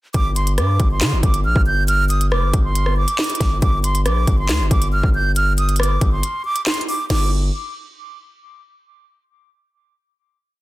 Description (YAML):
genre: hip hop, drill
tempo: 138 BPM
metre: 4/4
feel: half-time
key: G minor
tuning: A4 = 439 Hz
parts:
  - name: breathy concert flute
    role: melody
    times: 0.1-7.3 s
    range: C6 to G6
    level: -23 LUFS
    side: right 2 dB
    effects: ping-pong delay
  - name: distorted 808-style bass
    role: bass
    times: 0.1-7.5 s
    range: F1 to D3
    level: -18 LUFS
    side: equal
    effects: distortion
  - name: drill drum kit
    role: drums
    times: 0.1-7.2 s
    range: crash cymbal, handclaps, hi-hat, kick drum, rim click, snare drum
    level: -20 LUFS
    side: equal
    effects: none
room: little or no reverb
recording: dense, heavily limited modern master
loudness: -16 LUFS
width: side -17 dB against mid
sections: 0.1-7.1 hook; 7.1-8.8 final chord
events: break 6.2-7.1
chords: 0.1 G5